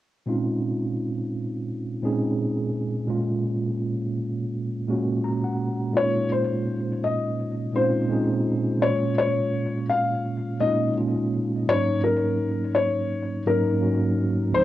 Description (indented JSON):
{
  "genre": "hip hop",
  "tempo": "84 BPM",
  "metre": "4/4",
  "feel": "swing 59% on 16ths",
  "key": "Bb minor",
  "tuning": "A4 = 440 Hz",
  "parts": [
    { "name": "mellow tine electric piano", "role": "accompaniment", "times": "0.3-14.6 s", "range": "Db2 to Bb5", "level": "-24 LUFS", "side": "right 1 dB", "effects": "medium stereo tremolo, cassette tape, low-pass filter" },
    { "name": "felt-muted upright piano", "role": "melody", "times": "6.0-14.6 s", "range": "Bb4 to F5", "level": "-25 LUFS", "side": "left 4 dB", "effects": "low-pass filter, cassette tape" }
  ],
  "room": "moderate booth ambience, RT60 0.3 s",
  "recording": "home recording on cassette",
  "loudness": "-22 LUFS",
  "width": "side -14 dB against mid",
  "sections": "0.2-6.0 A section; 6.0-14.6 B section",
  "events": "tine electric piano fill 4.9-6.0",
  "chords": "0.2 Bbm11; 3.1 Gbmaj7/Bb; 6.0 Bbm11; 8.8 Bbm7; 11.7 Ab9sus4"
}